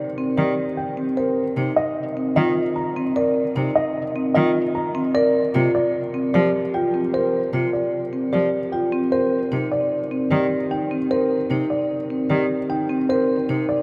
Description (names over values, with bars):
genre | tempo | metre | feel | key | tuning
classical, minimalist pattern music | 151 BPM | 5/4 | straight | C minor | A4 = 439 Hz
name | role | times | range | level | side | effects
dark baby grand piano | melody | 0.0-13.8 s | C5 to Bb5 | -27 LUFS | equal | none
marimba with medium mallets | arpeggios | 0.2-13.8 s | C4 to Bb4 | -24 LUFS | equal | none
rich cello | accompaniment | 0.4-13.6 s | C3 to F3 | -30 LUFS | equal | none
room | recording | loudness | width
wet cathedral reverb, RT60 7.4 s | in a vast, echoing space | -21 LUFS | mono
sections
0.0-13.8 A section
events
none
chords
0.0 C7(no3); 1.4 F7sus4/C; 5.3 Gm7/C; 9.3 Cm7